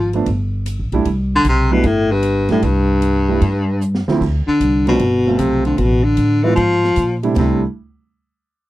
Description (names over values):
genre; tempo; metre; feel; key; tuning
jazz, small-group swing and bop; 152 BPM; 4/4; swing 66% on 8ths; C major; A4 = 441 Hz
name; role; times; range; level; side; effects
clear baritone saxophone; melody; 0.0-7.6 s; G2 to F3; -16 LUFS; left 2 dB; none
upright bass; bass; 0.0-7.6 s; G1 to Bb2; -18 LUFS; equal; none
warm grand piano; accompaniment; 0.1-7.6 s; D2 to F4; -19 LUFS; right 4 dB; none
open jazz drum kit; drums; 0.1-7.5 s; crash cymbal, hi-hat, kick drum, ride cymbal, snare drum; -25 LUFS; equal; none
room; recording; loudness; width
light reverb; dry, close 1970s-style studio recording; -14 LUFS; side -16 dB against mid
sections
0.0-4.2 A section; 4.2-7.4 B section; 7.4-8.7 C section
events
drum fill 3.8-4.2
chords
0.3 Gadd9; 1.1 C69; 4.2 Dm7; 5.0 G9sus4; 5.8 Asus2; 6.6 Abmaj13; 7.4 C69